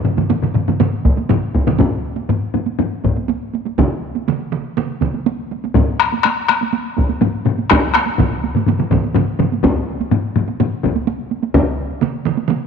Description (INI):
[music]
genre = japanese traditional, taiko drum ensemble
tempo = 123 BPM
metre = 4/4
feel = straight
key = none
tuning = none
[part]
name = taiko ensemble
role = percussion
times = 0.0-10.9 s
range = none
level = -18 LUFS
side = left 6 dB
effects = none
[part]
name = taiko ensemble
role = percussion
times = 0.1-12.6 s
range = none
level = -21 LUFS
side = right 8 dB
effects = none
[part]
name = taiko ensemble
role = percussion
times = 0.2-12.6 s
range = none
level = -22 LUFS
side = right 10 dB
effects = none
[part]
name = taiko ensemble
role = percussion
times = 1.1-11.7 s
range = none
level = -18 LUFS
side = left 1 dB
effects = none
[sound]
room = wet echo chamber reverb, RT60 2.2 s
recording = 1960s-style stereo with parts hard left and right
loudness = -15 LUFS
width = side -6 dB against mid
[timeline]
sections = 0.0-1.8 A section; 1.8-12.7 B section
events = speeding up 0.0-12.7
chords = none